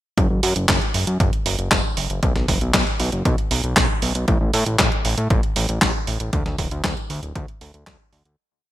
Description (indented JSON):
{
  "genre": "italo disco",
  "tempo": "117 BPM",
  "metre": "4/4",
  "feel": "straight",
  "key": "unclear",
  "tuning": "A4 = 443 Hz",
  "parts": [
    { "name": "fat analog bass", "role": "bass", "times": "0.2-8.4 s", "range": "D1 to A2", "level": "-23 LUFS", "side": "equal", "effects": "ping-pong delay" },
    { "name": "clean 12-bit digital drum machine", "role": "drums", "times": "0.2-8.4 s", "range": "handclaps, hi-hat, snare drum", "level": "-21 LUFS", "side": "right 1 dB", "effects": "small room reverb" },
    { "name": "electronic kick drum", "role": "drums", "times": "0.2-8.0 s", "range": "none", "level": "-22 LUFS", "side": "equal", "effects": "small room reverb" }
  ],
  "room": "light reverb",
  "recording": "bright 1980s-style digital production",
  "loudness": "-18 LUFS",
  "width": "side -14 dB against mid",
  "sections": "0.2-8.4 chorus",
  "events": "fade-out 5.6-8.4",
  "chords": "none"
}